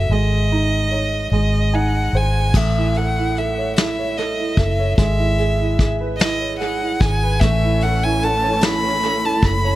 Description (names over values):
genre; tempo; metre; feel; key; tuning
six-eight pop ballad; 49 BPM (dotted quarters); 6/8; straight; unclear; A4 = 442 Hz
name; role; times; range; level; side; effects
clear violin; melody; 0.0-9.8 s; D#5 to B5; -22 LUFS; equal; tape echo
warm grand piano; accompaniment; 0.0-9.8 s; G#3 to G#5; -23 LUFS; right 4 dB; tape echo
vintage muted fingered electric bass; bass; 0.0-9.8 s; F#1 to A1; -20 LUFS; left 1 dB; none
vintage brush drum kit; drums; 2.5-9.6 s; crash cymbal, hi-hat, kick drum, snare drum; -19 LUFS; left 1 dB; tape echo
warm studio string section; sustained chords; 7.4-9.8 s; E3 to C#4; -27 LUFS; left 3 dB; none
room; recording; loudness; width
light reverb, small room ambience; echo-heavy mix; -16 LUFS; side -15 dB against mid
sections
0.0-2.5 A section; 2.5-9.8 B section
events
grand piano fill 1.3-2.5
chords
0.1 G#sus4; 1.3 G#5; 2.5 A; 5.0 E6/G#; 7.4 A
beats
| 0.10 1.32 | 2.54 3.77 | 4.98 6.20 | 7.41 8.62